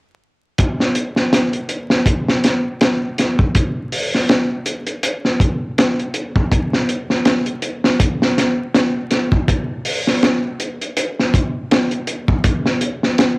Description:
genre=trip hop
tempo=81 BPM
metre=4/4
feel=swing 56% on 16ths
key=none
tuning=none
part: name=crunchy breakbeat drum kit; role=drums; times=0.6-13.4 s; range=hi-hat, kick drum, snare drum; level=-15 LUFS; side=equal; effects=cassette tape
room=light reverb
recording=home recording on cassette, vinyl crackle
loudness=-15 LUFS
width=side -28 dB against mid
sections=0.6-13.4 A section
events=none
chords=none

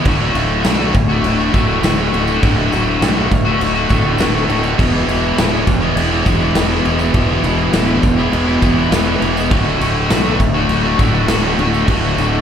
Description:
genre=classic rock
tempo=102 BPM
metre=4/4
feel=straight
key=D lydian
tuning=A4 = 440 Hz
part: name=biting overdriven guitar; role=riff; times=0.0-12.4 s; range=D2 to F#4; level=-20 LUFS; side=right 11 dB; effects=slapback echo
part: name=crunchy overdriven guitar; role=riff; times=0.0-12.4 s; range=D2 to F#4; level=-19 LUFS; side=left 10 dB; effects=slapback echo
part: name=crunchy overdriven guitar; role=riff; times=0.0-12.4 s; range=D2 to E3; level=-22 LUFS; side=equal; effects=phaser
part: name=fuzz fingered electric bass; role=bass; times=0.1-12.4 s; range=D1 to B1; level=-19 LUFS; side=equal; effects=overdrive
part: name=big rock drum kit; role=drums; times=0.1-12.3 s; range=crash cymbal, kick drum, snare drum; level=-18 LUFS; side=equal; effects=none
part: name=tambourine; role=percussion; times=0.4-12.4 s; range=none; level=-40 LUFS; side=left 2 dB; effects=none
room=light reverb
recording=live gig heard through the venue's PA, club reverb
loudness=-12 LUFS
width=side -8 dB against mid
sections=0.0-12.4 A section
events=none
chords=0.1 D; 4.8 E; 9.5 D

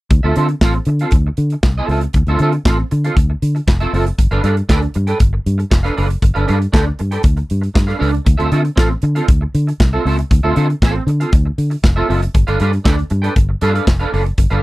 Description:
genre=disco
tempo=118 BPM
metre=4/4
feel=straight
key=D dorian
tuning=A4 = 439 Hz
part: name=electric guitar at the edge of break-up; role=accompaniment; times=0.1-14.6 s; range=C4 to G5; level=-20 LUFS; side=right 2 dB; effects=ensemble chorus
part: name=fingered electric bass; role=bass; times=0.1-14.6 s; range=F1 to D3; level=-16 LUFS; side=equal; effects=none
part: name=modern studio drum kit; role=drums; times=0.1-14.6 s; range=handclaps, hi-hat, kick drum, snare drum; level=-14 LUFS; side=equal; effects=none
room=little or no reverb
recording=dry, close 1970s-style studio recording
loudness=-13 LUFS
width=side -19 dB against mid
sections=0.1-14.6 A section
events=none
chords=0.1 Dm9; 4.2 G9; 8.3 Dm9; 12.3 G9

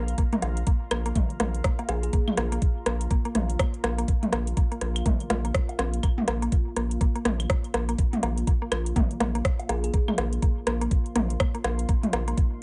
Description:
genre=minimal techno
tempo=123 BPM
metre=4/4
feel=swing 60% on 16ths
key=unclear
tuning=A4 = 440 Hz
part: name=rubbery square bass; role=bass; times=0.0-12.3 s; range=Bb1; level=-31 LUFS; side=equal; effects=sidechain pumping
part: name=deep dark ambient pad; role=texture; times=0.0-12.6 s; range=Bb3 to C6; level=-40 LUFS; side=equal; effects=chorus, built-in reverb, sidechain pumping
part: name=garage drum kit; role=drums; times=0.1-12.5 s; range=hi-hat, rim click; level=-35 LUFS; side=equal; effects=small room ambience
part: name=mallet-like synth pluck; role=riff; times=0.2-12.3 s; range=Bb3 to F4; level=-37 LUFS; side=equal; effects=chorus, sidechain pumping, dub echo
part: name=electronic kick drum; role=drums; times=0.2-12.5 s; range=none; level=-26 LUFS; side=equal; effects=small room ambience
part: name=techno drum kit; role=percussion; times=0.3-12.2 s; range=claves, rim click, toms, woodblock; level=-31 LUFS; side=equal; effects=small room ambience
part: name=thumb-piano-like synth pluck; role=melody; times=1.9-2.1, 9.7-9.9 s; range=Ab4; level=-39 LUFS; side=equal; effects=chorus, dub echo
room=light reverb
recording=nothing above 10.6 kHz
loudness=-26 LUFS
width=mono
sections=0.0-12.6 A section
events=none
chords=0.0 Bb5

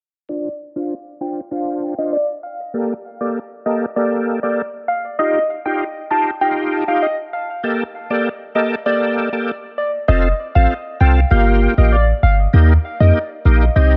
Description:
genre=dancehall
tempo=98 BPM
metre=4/4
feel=straight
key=G minor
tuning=A4 = 442 Hz
part: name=soft struck synth lead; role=melody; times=0.3-13.9 s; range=D5 to A5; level=-23 LUFS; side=equal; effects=chorus, low-pass filter, dub echo
part: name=overdriven tonewheel organ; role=accompaniment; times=0.3-14.0 s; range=Bb3 to C5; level=-23 LUFS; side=equal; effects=chorus vibrato, slow rotary speaker, low-pass filter
part: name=clean 808-style bass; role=bass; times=10.1-14.0 s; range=F1 to F2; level=-14 LUFS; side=equal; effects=none
room=light reverb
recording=echo-heavy mix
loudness=-18 LUFS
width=mono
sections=0.3-10.1 A section; 10.1-14.0 B section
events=filter sweep 0.3-10.1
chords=0.3 Dm7; 2.7 Gmadd9; 5.2 Ebadd9; 7.6 Gmadd9; 10.1 F; 11.3 Gm7; 12.5 Eb

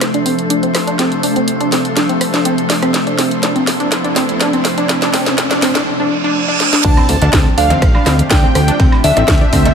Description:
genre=progressive house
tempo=123 BPM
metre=4/4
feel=straight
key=D minor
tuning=A4 = 440 Hz
part: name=evolving wavetable pad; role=sustained chords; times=0.0-9.7 s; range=C3 to A4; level=-19 LUFS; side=equal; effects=ensemble chorus, built-in reverb, sidechain pumping
part: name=house drum kit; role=drums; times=0.0-9.7 s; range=crash cymbal, hi-hat, rim click, snare drum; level=-18 LUFS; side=equal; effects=high-pass filter on snare, high-pass filter on hats, high-pass filter on cymbals, high-pass filter on room
part: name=riser, reverse cymbal and impact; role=sound effects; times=2.3-8.8 s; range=none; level=-21 LUFS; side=right 1 dB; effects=none
part: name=drifting glass-harmonics texture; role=texture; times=0.0-9.7 s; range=G4 to C6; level=-28 LUFS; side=right 2 dB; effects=chorus, built-in reverb, sidechain pumping
part: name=wide unison pluck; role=arpeggios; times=0.1-9.6 s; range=C4 to D4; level=-17 LUFS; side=equal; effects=sidechain pumping, ping-pong delay
part: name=glassy synth bell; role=melody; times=6.8-9.7 s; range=E5 to A5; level=-19 LUFS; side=equal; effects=chorus, phaser
part: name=soft supersaw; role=second line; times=6.8-9.7 s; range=E5 to A5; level=-22 LUFS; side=right 1 dB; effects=phaser, cassette tape, sidechain pumping, ping-pong delay
part: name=plucky analog bass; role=bass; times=6.8-9.7 s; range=A1 to D2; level=-15 LUFS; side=equal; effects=sidechain pumping
part: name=dusty soul sampler-style drum kit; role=drums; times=6.8-9.7 s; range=ride cymbal, snare drum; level=-30 LUFS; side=right 3 dB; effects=none
part: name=electronic kick drum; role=drums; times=6.8-9.6 s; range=none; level=-12 LUFS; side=equal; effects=none
part: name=woodblock, cowbell and congas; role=percussion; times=7.0-9.7 s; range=none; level=-22 LUFS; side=right 2 dB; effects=sidechain pumping on perc
room=light reverb, digital ambience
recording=none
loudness=-11 LUFS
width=side -6 dB against mid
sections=0.0-6.8 A section; 6.8-9.7 B section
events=build-up 0.0-6.8; drum fill 0.0-5.9, 6.6; filter sweep on synth pluck 0.0-6.8; filter sweep on ambient pad 0.0-6.8; reverse cymbal 5.9-6.8; drop 6.8-9.7; impact 6.8-8.8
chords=0.0 Dm7

